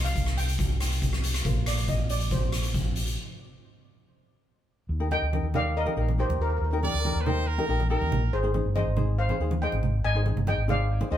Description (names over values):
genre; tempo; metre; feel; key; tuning
calypso; 140 BPM; 4/4; straight; Eb major; A4 = 438 Hz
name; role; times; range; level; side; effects
steel pan; melody; 0.0-11.2 s; G4 to Ab5; -31 LUFS; equal; none
ukulele; accompaniment; 0.0-11.2 s; Eb4 to C5; -33 LUFS; left 2 dB; none
fingered electric bass; bass; 0.0-11.2 s; G1 to Eb2; -26 LUFS; equal; none
street-band drum kit; drums; 0.1-3.2 s; hi-hat, kick drum, rim click; -29 LUFS; equal; none
congas; percussion; 5.1-11.1 s; none; -33 LUFS; right 2 dB; none
brilliant trumpet; second line; 6.8-8.4 s; Bb4 to D5; -32 LUFS; right 4 dB; none
room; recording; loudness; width
moderate studio reverb, RT60 0.8 s; band playing live in one room; -24 LUFS; side -11 dB against mid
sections
0.0-4.9 A section; 4.9-11.2 B section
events
break 3.2-4.9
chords
0.0 Cm; 1.5 Bbsus2; 4.9 Eb; 8.3 Abmaj7